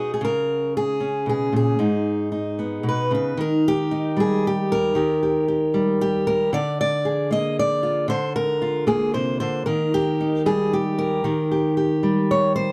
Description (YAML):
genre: folk, solo fingerstyle acoustic guitar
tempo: 114 BPM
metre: 3/4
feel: straight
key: G# minor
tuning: A4 = 440 Hz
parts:
  - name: fingerpicked steel-string acoustic guitar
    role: solo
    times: 0.0-12.7 s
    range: G#2 to D#5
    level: -22 LUFS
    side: equal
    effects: none
room: moderate small room reverb, RT60 0.6 s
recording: dark, warm production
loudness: -22 LUFS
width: mono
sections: 0.0-3.4 A section; 3.4-12.7 B section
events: none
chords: 0.2 C#5; 1.8 G#m; 3.4 D#; 6.5 A#7/D; 9.7 D#